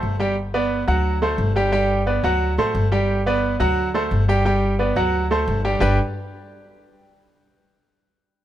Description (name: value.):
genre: latin, salsa.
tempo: 176 BPM.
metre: 4/4.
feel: straight.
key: G major.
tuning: A4 = 439 Hz.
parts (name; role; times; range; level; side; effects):
bright baby grand piano; accompaniment; 0.0-6.0 s; F#3 to G5; -20 LUFS; right 1 dB; none.
upright bass; bass; 0.0-6.0 s; G1 to D2; -22 LUFS; left 1 dB; none.
room: light reverb.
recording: dark, warm production.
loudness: -18 LUFS.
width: side -12 dB against mid.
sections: 0.4-5.8 A section; 5.8-7.2 B section.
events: none.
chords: 0.4 G; 1.1 D7; 1.7 G; 2.4 D7; 3.1 G; 3.8 D7; 4.5 G; 5.1 D7; 5.8 G5.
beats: 0.03 | 0.37 0.71 1.05 1.39 | 1.73 2.07 2.41 2.75 | 3.09 3.43 3.77 4.11 | 4.45 4.79 5.13 5.47 | 5.82.